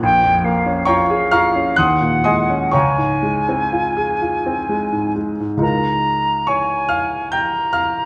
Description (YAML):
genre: classical, impressionist duo for flute and grand piano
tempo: 61-73 BPM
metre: 3/4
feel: rubato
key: Db lydian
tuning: A4 = 441 Hz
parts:
  - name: silver concert flute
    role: melody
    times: 0.0-8.1 s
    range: F5 to Bb5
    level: -21 LUFS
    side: equal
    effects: none
  - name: clear baby grand piano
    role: accompaniment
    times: 0.0-8.1 s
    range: Bb1 to G6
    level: -20 LUFS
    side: equal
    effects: none
room: wet recital hall reverb, RT60 1.4 s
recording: dark, warm production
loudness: -18 LUFS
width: mono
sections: 0.0-5.6 A section; 5.6-8.1 B section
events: none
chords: 0.0 Bbm7; 1.8 Ebm7; 2.7 Dbmaj7; 5.6 Db69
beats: | 0.04 0.88 1.78 | 2.73 3.72 4.68 | 5.62 6.49 7.33